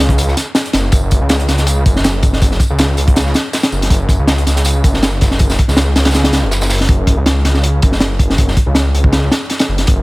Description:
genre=drum and bass, jungle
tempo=161 BPM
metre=4/4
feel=swing 54% on 16ths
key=unclear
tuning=A4 = 442 Hz
part: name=detuned saw bass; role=bass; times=0.0-10.0 s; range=F#1 to C#2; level=-14 LUFS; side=equal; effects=none
part: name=crunchy breakbeat drum kit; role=drums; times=0.0-10.0 s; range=hi-hat, kick drum, snare drum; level=-13 LUFS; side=equal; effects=none
part: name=crunchy breakbeat drum kit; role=drums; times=0.1-6.8 s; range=hi-hat, snare drum, tambourine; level=-24 LUFS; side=right 1 dB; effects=high-pass filter on hats, high-pass filter on snare, high-pass filter on perc, high-pass filter on room
room=little or no reverb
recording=none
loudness=-11 LUFS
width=side -22 dB against mid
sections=0.0-6.9 A section; 6.9-10.0 A section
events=drop 0.0-6.9, 6.9-10.0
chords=none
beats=0.18 0.55 | 0.93 1.30 1.67 2.04 | 2.42 2.79 3.16 3.54 | 3.91 4.28 4.65 5.03 | 5.40 5.77 6.14 6.52 | 6.89 7.26 7.63 8.01 | 8.38 8.75 9.12 9.50 | 9.87

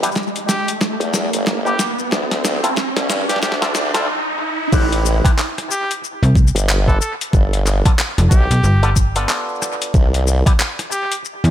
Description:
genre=glitch hop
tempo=92 BPM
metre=4/4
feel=swing 60% on 16ths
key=A minor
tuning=A4 = 439 Hz
part: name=clav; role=stabs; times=0.0-10.5 s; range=B3 to B4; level=-24 LUFS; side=equal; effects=auto-wah, sidechain pumping, analog delay
part: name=boom bap sampler-style drum kit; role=drums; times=0.0-11.5 s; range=crash cymbal, handclaps, hi-hat, rim click, shaker, snare drum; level=-22 LUFS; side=left 1 dB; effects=small room ambience, analog delay
part: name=riser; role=sound effects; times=0.0-4.7 s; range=none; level=-23 LUFS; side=right 1 dB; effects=none
part: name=electronic kick drum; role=drums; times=0.2-10.6 s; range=none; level=-14 LUFS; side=equal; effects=overdrive, high-pass filter on kick, small room ambience, high-pass filter on room
part: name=bright trumpet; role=melody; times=0.5-11.1 s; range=G4 to A4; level=-25 LUFS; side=equal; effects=analog delay
part: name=formant-sweep wobble bass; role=bass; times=1.0-10.4 s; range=G1 to G2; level=-18 LUFS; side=equal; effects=chorus, high-pass filter
part: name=slap-like FM bass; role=bass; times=6.2-11.5 s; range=F1 to E2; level=-13 LUFS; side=equal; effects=none
room=light reverb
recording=echo-heavy mix, high-pass filter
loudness=-15 LUFS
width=side -11 dB against mid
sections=0.0-4.7 A section; 4.7-11.5 B section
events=build-up 0.0-4.7; drum fill 0.0-4.1; riser 0.0-4.7; filter sweep on clav 0.0-4.7; stop 4.1-4.7; drop 4.7-11.5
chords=0.0 C (rootless); 2.1 D7(no3); 4.7 Am7; 7.3 G7; 9.9 N.C.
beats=0.16 0.81 1.46 | 2.12 2.77 3.42 4.07 | 4.72 5.38 6.03 6.68 | 7.33 7.99 8.64 9.29 | 9.94 10.59 11.25

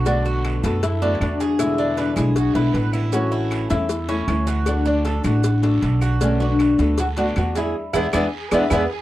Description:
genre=latin, Cuban son and guajira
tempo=156 BPM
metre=4/4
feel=straight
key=unclear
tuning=A4 = 440 Hz
part: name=flamenco guitar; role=accompaniment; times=0.0-8.8 s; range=B2 to F#4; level=-26 LUFS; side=left 2 dB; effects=none
part: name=Cuban tres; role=arpeggios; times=0.0-8.8 s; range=C#4 to B4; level=-26 LUFS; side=right 4 dB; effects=none
part: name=upright bass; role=bass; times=0.0-8.9 s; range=A1 to F#2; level=-22 LUFS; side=right 1 dB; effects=none
part: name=oud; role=melody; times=0.1-8.8 s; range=B3 to F#4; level=-22 LUFS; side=left 2 dB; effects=none
part: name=cowbell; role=percussion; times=0.1-8.8 s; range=none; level=-32 LUFS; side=left 6 dB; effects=none
part: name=guiro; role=percussion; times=0.1-8.8 s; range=none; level=-40 LUFS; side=right 9 dB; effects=none
part: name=maracas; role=percussion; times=0.1-8.8 s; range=none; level=-39 LUFS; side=right 20 dB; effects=none
part: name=claves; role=percussion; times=0.4-8.8 s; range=none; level=-35 LUFS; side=left 2 dB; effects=none
part: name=warm studio violin section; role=second line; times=2.4-3.0, 8.1-9.0 s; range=E4 to B4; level=-33 LUFS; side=right 2 dB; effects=none
room=light reverb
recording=dry, close 1970s-style studio recording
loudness=-18 LUFS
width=side -15 dB against mid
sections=0.0-9.0 A section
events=band accent 7.7-9.0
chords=0.1 Bm7; 1.6 E7; 3.1 A; 4.7 D; 6.2 Bm7; 7.7 E7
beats=| 0.06 0.45 0.83 1.21 | 1.60 1.98 2.36 2.75 | 3.13 3.52 3.90 4.29 | 4.67 5.05 5.44 5.82 | 6.21 6.59 6.98 7.36 | 7.75 8.13 8.52 8.90

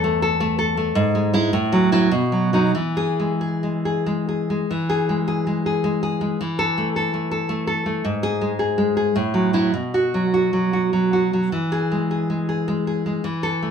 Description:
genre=romantic piece for solo classical guitar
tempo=90-112 BPM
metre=3/4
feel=rubato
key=E major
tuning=A4 = 440 Hz
part: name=nylon-string guitar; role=solo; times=0.0-13.7 s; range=E2 to A4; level=-19 LUFS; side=equal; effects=none
room=moderate studio ambience, RT60 0.5 s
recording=band playing live in one room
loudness=-19 LUFS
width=side -7 dB against mid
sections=0.0-4.7 A section; 4.7-13.7 B section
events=none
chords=0.0 Esus4; 1.0 E/G#; 1.5 F#m7/A; 2.1 B; 2.7 E; 6.4 Esus4; 8.0 N.C.; 9.1 F#m7/A; 9.7 B5; 11.5 E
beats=0.40 | 0.96 1.52 2.11 | 2.74 3.40 4.05 | 4.69 5.27 5.83 | 6.39 6.95 7.49 | 8.04 8.59 9.15 | 9.74 10.33 10.93 | 11.52 12.10 12.67 | 13.24

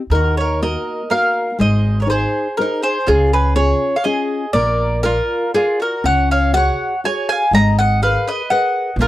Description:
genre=italian folk, Italian serenade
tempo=122 BPM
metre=3/4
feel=straight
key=Eb minor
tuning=A4 = 440 Hz
part: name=mandolin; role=melody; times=0.1-9.1 s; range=Ab4 to Bb5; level=-17 LUFS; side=equal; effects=none
part: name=mandolin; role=second line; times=0.1-9.1 s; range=Eb4 to F5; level=-25 LUFS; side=right 2 dB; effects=none
part: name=nylon-string guitar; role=accompaniment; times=0.1-9.1 s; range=Db3 to D5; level=-22 LUFS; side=left 2 dB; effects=none
part: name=upright bass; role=bass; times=0.1-9.1 s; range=Ab1 to Eb2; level=-18 LUFS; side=right 1 dB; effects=none
room=little or no reverb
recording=dry, close 1970s-style studio recording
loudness=-14 LUFS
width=side -15 dB against mid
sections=0.1-9.1 A section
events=none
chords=0.1 Ebm; 1.6 Ab; 3.1 Db; 4.5 Bb; 6.0 Dbsus4; 7.5 Abmadd9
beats=| 0.11 0.61 1.10 | 1.59 2.08 2.58 | 3.06 3.55 4.04 | 4.54 5.04 5.54 | 6.04 6.54 7.03 | 7.52 8.01 8.50 | 8.98

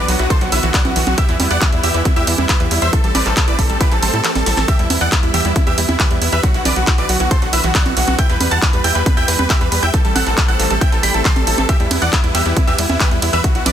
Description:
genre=uplifting trance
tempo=137 BPM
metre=4/4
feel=straight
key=E minor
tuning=A4 = 443 Hz
part: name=big supersaw lead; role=melody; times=0.0-13.7 s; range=C4 to C6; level=-20 LUFS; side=equal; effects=sidechain pumping, tape echo
part: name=warm grand piano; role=second line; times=0.0-13.7 s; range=E5 to C7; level=-26 LUFS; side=right 2 dB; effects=sidechain pumping, tape echo
part: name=lush unison pad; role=sustained chords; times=0.0-13.7 s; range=D3 to C4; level=-26 LUFS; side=left 1 dB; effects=chorus, sidechain pumping
part: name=tight sequencer bass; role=bass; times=0.0-13.7 s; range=A1 to A2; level=-20 LUFS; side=equal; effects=sidechain pumping
part: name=wide unison pluck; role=arpeggios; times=0.1-13.7 s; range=E3 to E4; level=-26 LUFS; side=right 5 dB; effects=sidechain pumping, tape echo
part: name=punchy analog drum machine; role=drums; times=0.1-13.7 s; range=congas, handclaps, hi-hat, ride cymbal, snare drum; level=-20 LUFS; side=right 2 dB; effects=none
part: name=electronic kick drum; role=drums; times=0.3-13.5 s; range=none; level=-16 LUFS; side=equal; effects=none
room=little or no reverb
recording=dense, heavily limited modern master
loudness=-13 LUFS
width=side -10 dB against mid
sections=0.0-13.7 A section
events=kick drops out 4.2-4.7; drum fill 4.4-4.7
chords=0.0 Bm; 1.2 Em; 2.9 Am7; 4.7 Em; 6.4 Bm; 8.2 Em; 9.9 Am7; 11.7 Em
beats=0.30 0.74 | 1.18 1.62 2.06 2.49 | 2.93 3.37 3.81 4.24 | 4.68 5.12 5.56 6.00 | 6.43 6.87 7.31 7.75 | 8.19 8.62 9.06 9.50 | 9.94 10.38 10.81 11.25 | 11.69 12.13 12.57 13.00 | 13.44

